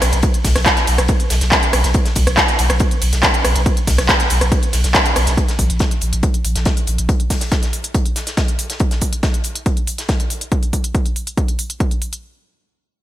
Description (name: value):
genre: driving peak-time techno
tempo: 140 BPM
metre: 4/4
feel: straight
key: unclear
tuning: A4 = 438 Hz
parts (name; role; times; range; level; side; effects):
- saturated sub bass; bass; 0.0-7.1 s; Bb1 to Cb2; -19 LUFS; equal; overdrive, sidechain pumping, low-pass filter
- modern studio drum kit; drums; 0.0-10.4 s; hi-hat, snare drum; -27 LUFS; left 2 dB; sidechain pumping on hats, high-pass filter on hats, high-pass filter on snare, high-pass filter on room, gated reverb
- techno drum kit; drums; 0.0-12.2 s; handclaps, hi-hat, ride cymbal, rim click; -18 LUFS; equal; overdrive, sidechain pumping on hats, sidechain pumping on cymbals, gated reverb
- electronic kick drum; drums; 0.2-11.9 s; none; -17 LUFS; equal; none
room: light reverb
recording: bright 1980s-style digital production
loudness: -14 LUFS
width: side -13 dB against mid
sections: 0.0-5.4 A section; 5.4-12.2 B section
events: drop 0.0-5.4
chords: none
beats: | 0.23 0.66 1.09 1.52 | 1.95 2.37 2.80 3.23 | 3.66 4.09 4.52 4.95 | 5.37 5.80 6.23 6.66 | 7.09 7.52 7.95 8.37 | 8.80 9.23 9.66 10.09 | 10.52 10.95 11.37 11.80